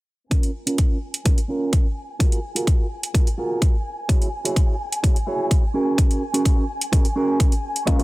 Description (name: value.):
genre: filtered disco house.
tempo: 127 BPM.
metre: 4/4.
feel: straight.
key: Db major.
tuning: A4 = 441 Hz.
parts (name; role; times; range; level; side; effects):
warm studio violin section; sustained chords; 0.3-8.0 s; Ab5 to Db6; -32 LUFS; left 1 dB; sidechain pumping, low-pass filter.
clean electric guitar; riff; 0.3-8.0 s; Db4 to C#5; -25 LUFS; right 2 dB; vintage 12-bit sampler grit, sidechain pumping, low-pass filter.
electronic hi-hat; drums; 0.3-8.0 s; none; -27 LUFS; right 2 dB; sidechain pumping on hats.
electronic kick drum; drums; 0.3-8.0 s; none; -18 LUFS; equal; none.
warm grand piano; accompaniment; 7.9-8.0 s; Ab3 to F4; -23 LUFS; left 3 dB; phaser, sidechain pumping, low-pass filter.
tambourine and congas; percussion; 7.9-8.0 s; none; -29 LUFS; left 5 dB; sidechain pumping on perc, low-pass filter on perc.
room: little or no reverb.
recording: dense, heavily limited modern master.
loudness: -18 LUFS.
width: side -20 dB against mid.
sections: 0.3-8.0 A section.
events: filter sweep 0.3-8.0.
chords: 0.3 Db6; 2.2 Gbmaj9; 4.1 E69; 5.7 Ab9sus4.